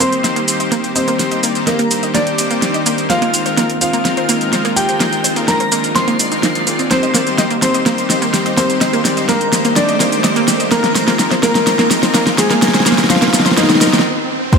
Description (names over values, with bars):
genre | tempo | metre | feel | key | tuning
progressive house | 126 BPM | 4/4 | straight | unclear | A4 = 440 Hz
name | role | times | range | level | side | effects
dark grand piano | melody | 0.0-14.6 s | Eb3 to C6 | -19 LUFS | left 1 dB | vintage 12-bit sampler grit, ping-pong delay
airy dreamy lead | second line | 0.0-14.6 s | Eb5 to C7 | -24 LUFS | equal | chorus, sidechain pumping, ping-pong delay
airy breathy pad | sustained chords | 0.0-14.6 s | Eb3 to G4 | -24 LUFS | right 1 dB | chorus, sidechain pumping
analog pluck | arpeggios | 0.0-14.6 s | Bb3 to Eb5 | -21 LUFS | right 2 dB | chorus, sidechain pumping, ping-pong delay
soft supersaw | stabs | 0.0-14.6 s | Ab3 to D5 | -20 LUFS | left 3 dB | sidechain pumping, ping-pong delay
deep house drum kit | drums | 0.0-14.6 s | crash cymbal, hi-hat, shaker, snare drum | -16 LUFS | equal | sidechain pumping on perc, small room ambience, sidechain pumping on hats, sidechain pumping on cymbals
riser | sound effects | 3.3-14.5 s | none | -25 LUFS | right 2 dB | none
electronic kick drum | drums | 14.5-14.6 s | none | -8 LUFS | right 1 dB | small room ambience
bongos | percussion | 14.5-14.6 s | none | barely audible | none | none
room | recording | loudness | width
moderate lush hall reverb, RT60 2.0 s | none | -12 LUFS | side -5 dB against mid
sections
0.0-14.5 A section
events
build-up 0.0-14.5; drum fill 0.0-14.1; filter sweep on synth arpeggio sound 0.0-14.5; filter sweep on analog synth pad 0.0-14.5; stop 14.1-14.5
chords
0.0 Cm7; 3.1 Bb9sus4; 6.9 Cm7; 10.7 Bb9sus4